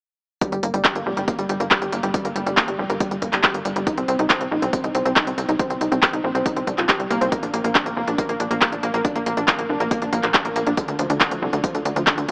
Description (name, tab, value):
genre	uplifting trance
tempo	139 BPM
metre	4/4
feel	straight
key	G minor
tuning	A4 = 440 Hz
part	analog pluck	arpeggios	0.4-12.3 s	D3 to G4	-27 LUFS	equal	chorus, sidechain pumping, dub echo
part	electronic kick drum	drums	0.4-12.2 s	none	-27 LUFS	equal	none
part	techno drum kit	drums	0.4-12.3 s	handclaps, hi-hat	-24 LUFS	equal	none
part	tight sequencer bass	bass	0.5-12.3 s	F1 to D2	-27 LUFS	equal	sidechain pumping
room	light reverb, digital ambience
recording	AM radio sound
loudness	-21 LUFS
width	mono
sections	0.4-12.3 A section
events	filter sweep on synth pluck 0.4-12.3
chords	none